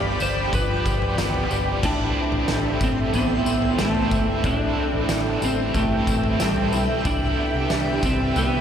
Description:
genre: dream pop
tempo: 92 BPM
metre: 4/4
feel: straight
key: unclear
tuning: A4 = 440 Hz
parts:
  - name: overdriven electric guitar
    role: accompaniment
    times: 0.0-8.6 s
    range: G2 to G4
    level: -31 LUFS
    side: right 4 dB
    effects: tremolo, wide subtle chorus
  - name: shimmering ambient pad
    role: sustained chords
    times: 0.0-8.6 s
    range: G4 to B5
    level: -28 LUFS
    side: right 1 dB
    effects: chorus, built-in reverb
  - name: electric guitar through a small old amp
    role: arpeggios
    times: 0.0-8.6 s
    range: G2 to G4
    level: -30 LUFS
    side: left 3 dB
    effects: ensemble chorus, analog delay
  - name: vintage muted fingered electric bass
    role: bass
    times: 0.0-8.6 s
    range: G1 to C2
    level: -28 LUFS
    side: equal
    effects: none
  - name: electric slide guitar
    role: melody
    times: 0.2-8.6 s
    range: G3 to C5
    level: -25 LUFS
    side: equal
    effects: analog delay
  - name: oversized low-tuned drum kit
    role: drums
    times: 0.2-8.5 s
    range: crash cymbal, kick drum, snare drum, tambourine, toms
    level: -26 LUFS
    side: equal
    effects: none
room: wet huge ambient reverb, RT60 6.9 s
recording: dreamy mix soaked in reverb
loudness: -20 LUFS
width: side -8 dB against mid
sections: 0.0-1.8 A section; 1.8-8.6 B section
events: none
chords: 0.0 G7; 1.8 Am7; 7.1 Cmaj7

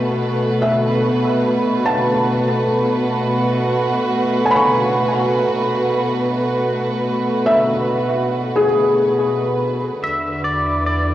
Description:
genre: ambient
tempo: 72 BPM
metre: 4/4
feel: straight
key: E mixolydian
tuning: A4 = 441 Hz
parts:
  - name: dark studio string section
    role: sustained chords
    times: 0.0-11.1 s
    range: B2 to B4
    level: -17 LUFS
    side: equal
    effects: cassette tape
  - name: felt-muted upright piano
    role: arpeggios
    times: 0.0-10.0 s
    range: G#4 to C#6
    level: -20 LUFS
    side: left 1 dB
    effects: cassette tape, analog delay
  - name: pedal steel guitar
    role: melody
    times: 10.0-11.1 s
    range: D5 to E5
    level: -20 LUFS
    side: equal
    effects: cassette tape
  - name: warm sub bass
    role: bass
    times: 10.0-11.1 s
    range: E2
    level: -24 LUFS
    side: equal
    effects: none
room: wet spring reverb, RT60 2.6 s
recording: home recording on cassette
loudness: -15 LUFS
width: side -13 dB against mid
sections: 0.0-10.0 A section; 10.0-11.1 B section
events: none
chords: 0.0 Esus4; 10.0 E7(no3)

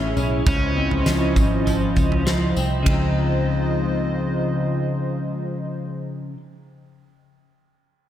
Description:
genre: dream pop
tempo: 100 BPM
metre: 4/4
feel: straight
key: Db major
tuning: A4 = 440 Hz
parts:
  - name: overdriven slide guitar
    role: melody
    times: 0.0-2.2 s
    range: C#4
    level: -26 LUFS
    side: left 3 dB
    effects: tape echo
  - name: hollow soft pad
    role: sustained chords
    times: 0.0-5.9 s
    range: Db3 to E5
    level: -27 LUFS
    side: right 2 dB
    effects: chorus
  - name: clean electric guitar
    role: arpeggios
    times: 0.0-6.4 s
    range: A2 to Eb4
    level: -24 LUFS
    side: left 2 dB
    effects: lush chorus, tape echo
  - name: vintage muted fingered electric bass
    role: bass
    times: 0.0-5.9 s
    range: Ab1 to Db2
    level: -25 LUFS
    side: equal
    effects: none
  - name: huge arena drum kit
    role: drums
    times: 0.2-3.0 s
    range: kick drum, ride cymbal, snare drum, tambourine, toms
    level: -23 LUFS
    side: right 1 dB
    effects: none
room: moderate lush hall reverb, RT60 2.3 s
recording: none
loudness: -19 LUFS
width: side -11 dB against mid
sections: 0.0-2.9 A section; 2.9-5.3 B section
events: none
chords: 0.5 Dbmaj9

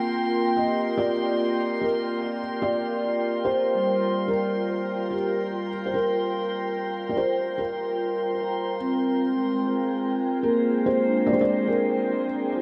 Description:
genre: ambient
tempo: 73 BPM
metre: 4/4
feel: straight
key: unclear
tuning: A4 = 441 Hz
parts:
  - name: felt-muted upright piano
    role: melody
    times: 0.0-12.3 s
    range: G4 to G5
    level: -29 LUFS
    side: equal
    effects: shimmer reverb, tape echo
  - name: glassy FM pad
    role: sustained chords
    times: 0.0-12.6 s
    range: Ab3 to G5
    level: -31 LUFS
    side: equal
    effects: ensemble chorus, built-in reverb, shimmer reverb
  - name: vibraphone with soft mallets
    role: arpeggios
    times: 0.0-12.6 s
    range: G3 to Bb5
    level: -30 LUFS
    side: equal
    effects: tape echo
  - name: bowed-like drone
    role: drone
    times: 0.0-9.3 s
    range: none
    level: barely audible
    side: none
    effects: none
  - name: drifting glass-harmonics texture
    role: texture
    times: 0.0-9.2 s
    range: C6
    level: -39 LUFS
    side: equal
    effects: chorus, built-in reverb, shimmer reverb
room: wet huge ambient reverb, RT60 8.2 s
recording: dark, warm production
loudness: -25 LUFS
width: mono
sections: 0.0-9.2 A section; 9.2-12.6 B section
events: filter sweep on ambient pad 9.2-12.6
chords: 0.0 Gm7; 9.2 Abmaj9#11

